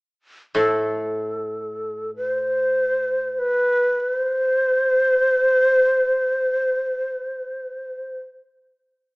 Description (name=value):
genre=japanese traditional, Japanese chamber music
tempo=free time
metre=none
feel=none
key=A minor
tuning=A4 = 435 Hz
part: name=breathy shakuhachi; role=melody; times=0.5-8.2 s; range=A4 to C5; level=-19 LUFS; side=equal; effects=none
part: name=koto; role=accompaniment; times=0.5-3.9 s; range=A2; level=-29 LUFS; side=left 1 dB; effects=none
room=moderate recital hall reverb, RT60 1.4 s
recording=small speaker sound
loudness=-19 LUFS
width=side -32 dB against mid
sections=0.0-9.2 A section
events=none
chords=none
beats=free time